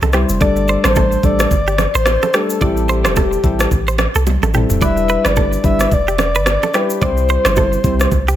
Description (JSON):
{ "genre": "afrobeats", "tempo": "109 BPM", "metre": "4/4", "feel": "swing 58% on 16ths", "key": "C major", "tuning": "A4 = 440 Hz", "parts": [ { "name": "direct-recorded clean electric guitar", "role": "riff", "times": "0.0-8.4 s", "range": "G4 to D5", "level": "-22 LUFS", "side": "right 5 dB", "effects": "digital delay" }, { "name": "punchy sub bass", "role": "bass", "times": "0.0-8.4 s", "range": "D1 to C2", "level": "-18 LUFS", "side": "equal", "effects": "none" }, { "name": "afro-pop drum kit", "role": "drums", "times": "0.0-8.4 s", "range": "kick drum, rim click, shaker, toms", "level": "-18 LUFS", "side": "equal", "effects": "none" }, { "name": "bongos and congas", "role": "percussion", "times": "0.0-8.3 s", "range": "none", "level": "-24 LUFS", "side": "right 7 dB", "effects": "none" }, { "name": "soft electric-piano-like synth keys", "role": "accompaniment", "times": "0.1-8.1 s", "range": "G3 to C5", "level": "-19 LUFS", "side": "left 2 dB", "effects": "chorus" }, { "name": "breathy flute-like synth lead", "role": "melody", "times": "0.4-8.4 s", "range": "G4 to E5", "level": "-19 LUFS", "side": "left 1 dB", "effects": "chorus" } ], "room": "digital ambience", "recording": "none", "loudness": "-12 LUFS", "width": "side -12 dB against mid", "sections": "0.0-8.4 A section", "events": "drum fill 4.3-4.8", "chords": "0.4 Gsus2; 2.6 Am7; 4.8 Em7; 7.0 C" }